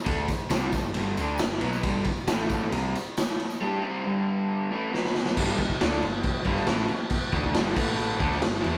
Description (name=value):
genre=garage rock duo or trio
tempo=136 BPM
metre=4/4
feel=straight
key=G major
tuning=A4 = 440 Hz
part: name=raw garage guitar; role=riff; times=0.1-8.8 s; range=G2 to G4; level=-31 LUFS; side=equal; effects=overdrive
part: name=woody fretless electric bass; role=bass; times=0.1-8.8 s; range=G1 to E2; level=-37 LUFS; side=equal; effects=tube saturation
part: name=raw garage drum kit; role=drums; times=0.1-8.7 s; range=crash cymbal, kick drum, ride cymbal, snare drum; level=-29 LUFS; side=equal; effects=none
part: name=tambourine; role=percussion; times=0.1-3.6 s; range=none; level=-49 LUFS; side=equal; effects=none
room=light reverb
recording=rough rehearsal-room recording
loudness=-27 LUFS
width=mono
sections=0.0-5.4 A section; 5.4-8.8 B section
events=drum fill 4.9-5.4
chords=0.0 G; 2.3 A5; 2.7 G5; 4.9 B5; 5.4 G5; 7.8 A5; 8.2 G